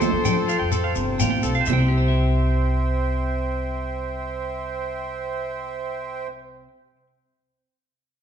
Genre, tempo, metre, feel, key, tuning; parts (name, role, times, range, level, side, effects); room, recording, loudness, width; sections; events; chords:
highlife guitar band; 126 BPM; 4/4; straight; C major; A4 = 436 Hz
bright horn section; melody; 0.0-1.2 s; A4 to C5; -26 LUFS; left 3 dB
breathy trombone; second line; 0.0-1.2 s; F3; -36 LUFS; right 3 dB
electric guitar at the edge of break-up; accompaniment; 0.0-7.1 s; C3 to F5; -30 LUFS; left 5 dB
accordion; sustained chords; 0.0-6.3 s; C5 to A5; -29 LUFS; right 4 dB; light tremolo tuning
clean electric guitar; arpeggios; 0.0-6.7 s; A4 to G5; -28 LUFS; right 5 dB; spring reverb
congas; percussion; 0.0-1.9 s; -27 LUFS; right 4 dB
shekere; percussion; 0.0-1.9 s; -28 LUFS; left 5 dB
upright bass; bass; 0.1-6.6 s; G1 to F3; -24 LUFS; equal
wet large studio reverb, RT60 1.5 s; band playing live in one room; -21 LUFS; side -8 dB against mid
0.0-1.7 A section; 1.7-5.5 B section
0.0 Fadd9; 1.7 C